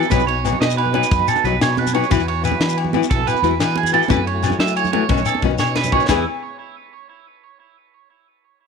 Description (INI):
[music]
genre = highlife guitar band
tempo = 120 BPM (dotted quarters)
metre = 12/8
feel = straight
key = unclear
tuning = A4 = 440 Hz
[part]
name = flamenco guitar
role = accompaniment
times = 0.0-6.2 s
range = D#3 to G#4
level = -22 LUFS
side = left 15 dB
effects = none
[part]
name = mellow tonewheel organ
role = sustained chords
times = 0.0-6.2 s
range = A3 to G#4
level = -29 LUFS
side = left 1 dB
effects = slow rotary speaker, chorus vibrato
[part]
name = electric guitar at the edge of break-up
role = arpeggios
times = 0.0-6.2 s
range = E4 to E5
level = -20 LUFS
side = right 13 dB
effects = phaser, tape echo
[part]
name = shekere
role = percussion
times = 0.0-6.2 s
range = none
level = -27 LUFS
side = left 7 dB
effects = none
[part]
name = fingered electric bass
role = bass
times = 0.1-6.2 s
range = B1 to F#3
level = -23 LUFS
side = left 1 dB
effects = none
[part]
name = tight funk drum kit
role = drums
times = 0.1-6.2 s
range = crash cymbal, kick drum, ride cymbal, snare drum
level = -23 LUFS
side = left 1 dB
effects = none
[part]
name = agogo bells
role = percussion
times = 0.1-6.2 s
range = none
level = -27 LUFS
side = left 14 dB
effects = none
[part]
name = congas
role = percussion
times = 0.1-6.2 s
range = none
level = -28 LUFS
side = right 10 dB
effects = none
[sound]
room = light reverb, small room ambience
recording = 1960s-style stereo with parts hard left and right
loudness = -15 LUFS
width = side -5 dB against mid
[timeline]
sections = 0.0-6.1 A section; 6.1-8.1 B section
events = drum fill 5.6-6.1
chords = 0.1 B; 2.1 Esus2; 4.1 F#m7; 5.1 Badd9; 6.1 E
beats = | 0.11 0.61 1.11 1.61 | 2.10 2.60 3.10 3.60 | 4.10 4.59 5.09 5.59 | 6.09